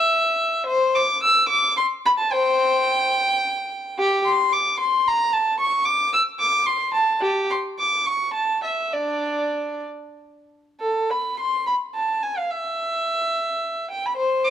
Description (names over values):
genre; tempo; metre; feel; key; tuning
classical, baroque-style suite movement for unaccompanied violin; 58-77 BPM (dotted quarters); 6/8; rubato; unclear; A4 = 440 Hz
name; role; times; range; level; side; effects
dark violin; solo; 0.0-14.5 s; D4 to E6; -19 LUFS; equal; none
room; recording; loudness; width
light reverb; close, detailed microphones; -19 LUFS; side -10 dB against mid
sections
0.0-10.8 A section; 10.8-14.5 A section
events
none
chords
none